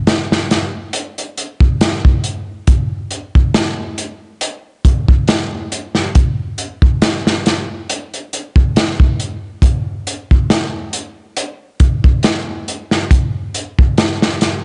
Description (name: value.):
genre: trip hop.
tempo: 69 BPM.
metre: 4/4.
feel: swing 55% on 16ths.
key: none.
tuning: none.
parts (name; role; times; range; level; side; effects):
crunchy breakbeat drum kit; drums; 0.1-14.6 s; hi-hat, kick drum, snare drum; -15 LUFS; equal; none.
room: little or no reverb.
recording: dark, warm production, nothing above 10.6 kHz.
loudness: -16 LUFS.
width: mono.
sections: 0.0-14.6 A section.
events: none.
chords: none.